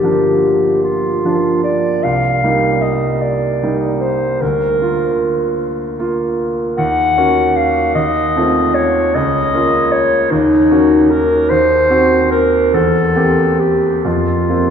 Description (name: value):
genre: classical, romantic duo for clarinet and grand piano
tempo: 50 BPM (dotted quarters)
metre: 6/8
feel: rubato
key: Bb major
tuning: A4 = 440 Hz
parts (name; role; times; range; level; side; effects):
- mellow clarinet; melody; 0.0-14.7 s; Eb4 to Gb5; -14 LUFS; left 1 dB; none
- bright concert grand piano; accompaniment; 0.0-14.7 s; G1 to G4; -16 LUFS; right 2 dB; none
room: wet cathedral reverb, RT60 4.6 s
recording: recorded in a church or concert hall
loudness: -12 LUFS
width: side -7 dB against mid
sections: 0.0-14.7 A section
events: none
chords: 0.0 Gm7; 2.0 Cm7; 4.4 Bb/D; 6.8 Ebm7; 8.0 F7/Eb; 9.2 Bbm/Db; 10.3 Ebm7; 11.5 Cdim/Eb; 12.7 C7/E; 14.0 Fsus4